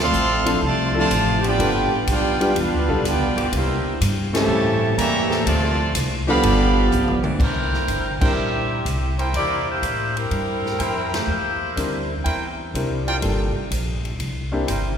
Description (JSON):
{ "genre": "jazz, big band swing", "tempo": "124 BPM", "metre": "4/4", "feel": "swing 69% on 8ths", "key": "C mixolydian from 7.4 s", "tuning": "A4 = 440 Hz", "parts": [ { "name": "bright trumpet section", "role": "melody", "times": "0.0-7.2 s", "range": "D4 to C6", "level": "-23 LUFS", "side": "right 1 dB", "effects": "none" }, { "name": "clear trombone section", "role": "second line", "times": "0.0-7.2 s", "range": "C3 to G4", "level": "-24 LUFS", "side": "right 2 dB", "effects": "none" }, { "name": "upright bass", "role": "bass", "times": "0.0-15.0 s", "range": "G1 to A2", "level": "-24 LUFS", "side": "equal", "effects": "none" }, { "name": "swinging big-band drum kit", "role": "drums", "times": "0.1-14.8 s", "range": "crash cymbal, hi-hat, kick drum, ride cymbal, snare drum, toms", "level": "-28 LUFS", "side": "equal", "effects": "none" }, { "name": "clear upright piano", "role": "accompaniment", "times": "0.5-8.8, 11.8-14.7 s", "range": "F3 to Bb4", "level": "-26 LUFS", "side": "left 1 dB", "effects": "none" }, { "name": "clear saxophone section", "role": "sustained chords", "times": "1.4-7.8 s", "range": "C#3 to A4", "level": "-32 LUFS", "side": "equal", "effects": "none" }, { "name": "bright saxophone section", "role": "melody", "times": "7.4-12.1 s", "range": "G3 to G5", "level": "-25 LUFS", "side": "equal", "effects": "none" }, { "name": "warm trumpet section", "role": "stabs", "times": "8.2-15.0 s", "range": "E4 to G5", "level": "-29 LUFS", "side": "right 1 dB", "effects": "none" } ], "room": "wet church reverb, RT60 2.8 s", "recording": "recorded in a church or concert hall", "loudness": "-18 LUFS", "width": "side -8 dB against mid", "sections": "0.0-7.4 A section; 7.4-15.0 B section", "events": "band accent 4.2, 8.1, 11.0; drum fill 6.9-7.4", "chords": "0.0 Dm7; 1.6 G7; 3.5 C7; 4.5 A7b9; 5.5 Dm7; 6.4 G7; 7.4 C7; 13.2 Gm7; 14.2 C7", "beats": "0.14 0.62 1.10 | 1.59 2.07 2.55 3.04 | 3.52 4.00 4.49 4.97 | 5.45 5.94 6.42 6.91 | 7.39 7.88 8.36 8.85 | 9.33 9.82 10.30 10.79 | 11.28 11.76 12.25 12.73 | 13.22 13.71 14.19 14.68" }